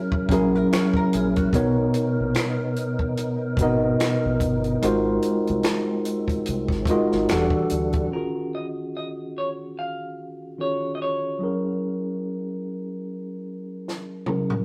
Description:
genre	R&B, neo-soul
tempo	73 BPM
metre	4/4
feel	swing 57% on 16ths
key	Eb minor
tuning	A4 = 441 Hz
part	tine electric piano	accompaniment	0.0-14.6 s	B2 to D#5	-26 LUFS	equal	none
part	tonewheel organ	sustained chords	0.0-8.1 s	E3 to Bb4	-34 LUFS	equal	slow rotary speaker, chorus vibrato
part	compact cocktail drum kit	drums	0.1-8.1, 13.9-14.6 s	finger snaps, hi-hat, kick drum, snare drum, toms	-29 LUFS	equal	none
part	archtop guitar, miked and amplified	second line	0.3-1.8 s	Gb4 to Db5	-36 LUFS	equal	none
part	deep dub fingered electric bass	bass	0.3-8.0 s	E1 to D2	-32 LUFS	equal	none
part	semi-hollow electric guitar	melody	8.1-12.6 s	Bb4 to F5	-32 LUFS	equal	none
room	moderate stone room reverb, RT60 1.0 s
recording	rough rehearsal-room recording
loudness	-24 LUFS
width	mono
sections	0.0-8.1 A section; 8.1-14.6 B section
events	drum fill 13.9-14.6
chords	0.0 Gb7; 1.5 Bmaj9; 4.8 Ab13; 7.3 Em11; 8.1 Ebm11; 11.4 Gb7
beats	0.71 | 1.53 2.35 3.17 3.99 | 4.82 5.64 6.46 7.28 | 8.10 8.93 9.75 10.57 | 11.39 12.21 13.04 13.86

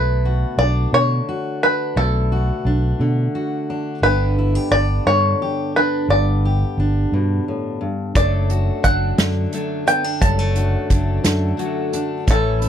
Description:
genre	indie folk with a building arrangement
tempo	58 BPM (dotted quarters)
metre	6/8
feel	straight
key	unclear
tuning	A4 = 442 Hz
part	bluegrass banjo	melody	0.0-12.7 s	A4 to A5	-19 LUFS	equal	none
part	fingerpicked steel-string acoustic guitar	accompaniment	0.0-12.7 s	F#2 to G4	-24 LUFS	left 1 dB	none
part	fingered electric bass	bass	0.0-12.7 s	F#1 to B2	-19 LUFS	equal	none
part	picked steel-string acoustic guitar	accompaniment	8.2-12.7 s	A2 to A4	-27 LUFS	left 3 dB	none
part	unplugged drum kit	drums	8.2-12.7 s	hi-hat, kick drum, snare drum	-19 LUFS	equal	none
room	little or no reverb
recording	dry, close 1970s-style studio recording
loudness	-16 LUFS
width	side -9 dB against mid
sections	0.0-12.7 A section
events	none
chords	0.0 Bm7; 4.0 G; 8.2 D/F#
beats	0.93 | 1.96 3.00 | 4.03 5.06 | 6.10 7.13 | 8.16 9.19 | 10.22 11.25 | 12.28

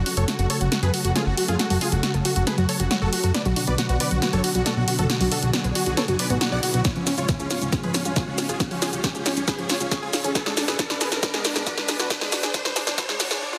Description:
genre	uplifting trance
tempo	137 BPM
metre	4/4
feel	straight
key	F# harmonic minor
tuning	A4 = 441 Hz
part	dense compressed supersaw	melody	0.0-13.6 s	B3 to F#5	-30 LUFS	equal	sidechain pumping, delay
part	analog string pad	sustained chords	0.0-13.4 s	G#2 to A4	-32 LUFS	equal	ensemble chorus, sidechain pumping
part	plucky analog bass	bass	0.0-13.4 s	F#1 to G#2	-28 LUFS	equal	sidechain pumping
part	riser	sound effects	5.3-13.4 s	none	-38 LUFS	equal	none
part	analog pluck	arpeggios	0.1-13.3 s	E#3 to D5	-34 LUFS	equal	chorus, sidechain pumping, delay
part	big-room dance drum kit	drums	0.1-13.4 s	hi-hat, shaker, snare drum	-27 LUFS	equal	small room reverb
part	electronic kick drum	drums	6.8-13.1 s	none	-30 LUFS	equal	small room reverb
room	moderate huge ambient reverb, RT60 3.8 s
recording	dense, heavily limited modern master, high-pass filter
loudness	-23 LUFS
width	mono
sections	0.0-13.6 A section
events	build-up 0.0-13.6; drum fill 0.0-13.4; riser 5.3-13.4; filter sweep on synth pluck 0.0-13.6; filter sweep 0.0-13.6; break 13.4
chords	0.0 F#m; 3.3 Bm; 6.8 C#; 10.4 G#dim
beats	0.28 0.72 1.16 | 1.59 2.03 2.47 2.91 | 3.35 3.78 4.22 4.66 | 5.10 5.54 5.97 6.41 | 6.85 7.29 7.72 8.16 | 8.60 9.04 9.48 9.91 | 10.35 10.79 11.23 11.67 | 12.11 12.54 12.98 13.42

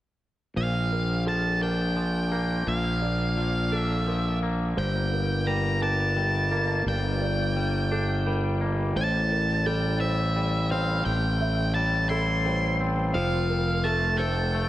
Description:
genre	rock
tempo	57 BPM (dotted quarters)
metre	6/8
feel	straight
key	unclear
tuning	A4 = 439 Hz
part	octave-fuzz lead guitar	melody	0.6-14.7 s	E5 to C6	-29 LUFS	equal	distortion, analog delay
part	felt-muted upright piano	arpeggios	0.6-14.7 s	A4 to E5	-35 LUFS	right 4 dB	analog delay
part	twangy electric guitar	arpeggios	0.6-14.7 s	G2 to A4	-31 LUFS	left 3 dB	analog delay
part	fuzz fingered electric bass	bass	0.6-14.7 s	F1 to Bb1	-26 LUFS	equal	overdrive
room	moderate lush hall reverb, RT60 2.3 s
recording	dreamy mix soaked in reverb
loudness	-23 LUFS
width	side -14 dB against mid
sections	0.6-14.7 A section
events	none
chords	0.6 Bbmaj7; 4.8 Gmadd9; 9.0 Am7; 13.2 F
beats	| 0.56 1.62 | 2.67 3.72 | 4.77 5.82 | 6.87 7.92 | 8.97 10.02 | 11.06 12.11 | 13.15 14.20

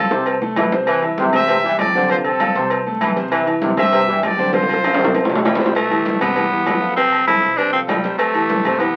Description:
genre	latin, salsa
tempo	197 BPM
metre	4/4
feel	straight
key	C major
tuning	A4 = 440 Hz
part	warm trumpet section	melody	0.0-5.4 s	C4 to E5	-21 LUFS	equal	none
part	clear grand piano	accompaniment	0.0-8.9 s	C3 to C6	-24 LUFS	equal	none
part	upright bass	bass	0.0-9.0 s	B1 to G2	-35 LUFS	equal	none
part	bright trombone section	second line	0.1-5.6 s	C3 to E3	-24 LUFS	equal	none
part	cowbell and bongos	percussion	0.1-9.0 s	none	-28 LUFS	equal	none
part	agogo bells and timbales	percussion	0.3-9.0 s	none	-24 LUFS	equal	none
part	congas	percussion	0.3-9.0 s	none	-30 LUFS	equal	none
part	raspy tenor saxophone	melody	5.5-9.0 s	G3 to E4	-20 LUFS	equal	none
room	wet club ambience, RT60 0.5 s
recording	very old 78 rpm record, vinyl crackle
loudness	-17 LUFS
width	mono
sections	0.0-5.8 A section; 5.8-9.0 B section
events	drum fill 0.1-0.9, 4.5-5.8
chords	0.0 F; 0.9 C; 2.1 F; 3.3 C; 4.5 F; 5.8 C; 7.0 F; 8.2 C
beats	0.27 0.57 | 0.88 1.18 1.49 1.79 | 2.10 2.40 2.71 3.01 | 3.31 3.62 3.92 4.23 | 4.54 4.84 5.14 5.45 | 5.75 6.06 6.36 6.67 | 6.97 7.28 7.58 7.89 | 8.19 8.50 8.80

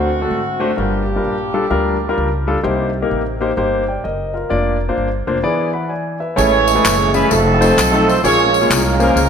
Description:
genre	uptempo gospel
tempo	129 BPM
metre	4/4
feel	swing 65% on 8ths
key	unclear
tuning	A4 = 440 Hz
part	mellow horn section	melody	0.0-2.4, 6.4-9.3 s	A3 to Db5	-17 LUFS	right 2 dB	slapback echo
part	warm concert grand piano	accompaniment	0.0-9.2 s	G2 to B5	-18 LUFS	left 2 dB	none
part	upright bass	bass	0.0-9.3 s	F1 to D2	-21 LUFS	equal	none
part	overdriven tonewheel organ	sustained chords	6.4-9.3 s	E3 to A4	-19 LUFS	right 4 dB	fast rotary speaker, chorus vibrato
part	tambourine and handclaps	percussion	6.4-9.3 s	none	-22 LUFS	left 5 dB	none
room	moderate concert hall reverb, RT60 2.1 s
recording	none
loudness	-14 LUFS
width	side -7 dB against mid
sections	0.0-6.4 A section; 6.4-9.3 B section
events	grand piano fill 5.5-6.4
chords	0.0 D7; 0.8 Gm7; 2.6 Cm7; 4.5 Bb/F; 5.5 E7; 6.4 Amaj7; 7.3 F7; 8.2 Bbm7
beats	0.31 | 0.78 1.24 1.71 2.18 | 2.65 3.12 3.58 4.05 | 4.52 4.98 5.45 5.92 | 6.38 6.84 7.31 7.77 | 8.23 8.70 9.16

